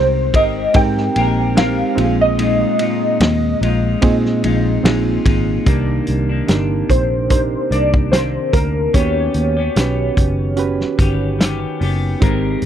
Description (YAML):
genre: indie pop, bedroom pop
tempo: 73 BPM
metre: 4/4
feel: swing 55% on 16ths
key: C minor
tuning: A4 = 441 Hz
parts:
  - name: warbly lo-fi synth keys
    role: melody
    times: 0.0-11.4 s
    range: Bb4 to G5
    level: -19 LUFS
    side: equal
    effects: ensemble chorus
  - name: clean electric guitar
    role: accompaniment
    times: 0.0-12.7 s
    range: Bb2 to Bb4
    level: -22 LUFS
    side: left 5 dB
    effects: lush chorus, warbly pitch drift
  - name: reed electric piano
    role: accompaniment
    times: 0.0-12.7 s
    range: C4 to B4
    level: -22 LUFS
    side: right 8 dB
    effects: none
  - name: vintage muted picked electric bass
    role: bass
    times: 0.0-12.7 s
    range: F#1 to Bb2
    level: -19 LUFS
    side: equal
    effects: none
  - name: loose indie drum kit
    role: drums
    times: 0.3-12.7 s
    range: hi-hat, kick drum, ride cymbal, snare drum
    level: -17 LUFS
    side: equal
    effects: none
room: little or no reverb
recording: dry, close 1970s-style studio recording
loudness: -14 LUFS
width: side -10 dB against mid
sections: 0.0-5.7 A section; 5.7-12.7 B section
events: none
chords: 0.0 Abmaj9; 2.0 Bb7sus4; 5.7 Cm9; 8.9 Eb7alt